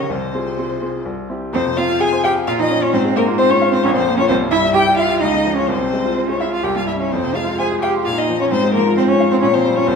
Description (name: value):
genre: quick classical-period movement for piano trio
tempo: 129 BPM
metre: 3/4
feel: rubato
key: F minor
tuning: A4 = 438 Hz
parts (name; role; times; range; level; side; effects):
- rich violin; melody; 0.0-10.0 s; Bb4 to Ab5; -19 LUFS; left 5 dB; none
- rich cello; second line; 0.0-10.0 s; C3 to Ab4; -20 LUFS; right 6 dB; none
- bright grand piano; accompaniment; 0.0-10.0 s; Bb1 to C6; -19 LUFS; left 1 dB; none
room: wet recital hall reverb, RT60 1.6 s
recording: minimal, uncompressed stereo recording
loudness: -14 LUFS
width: side -6 dB against mid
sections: 0.0-1.5 A section; 1.5-10.0 B section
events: none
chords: 0.1 Fm/C; 1.1 C; 1.5 Fm; 2.5 Bbm; 2.9 Fm/Ab; 3.8 Bbmadd9; 4.3 C; 5.2 Dbadd9; 5.7 Fm/C; 6.6 C; 7.1 Fm; 8.1 Bb5; 8.5 Fm/Ab; 9.4 Bbm69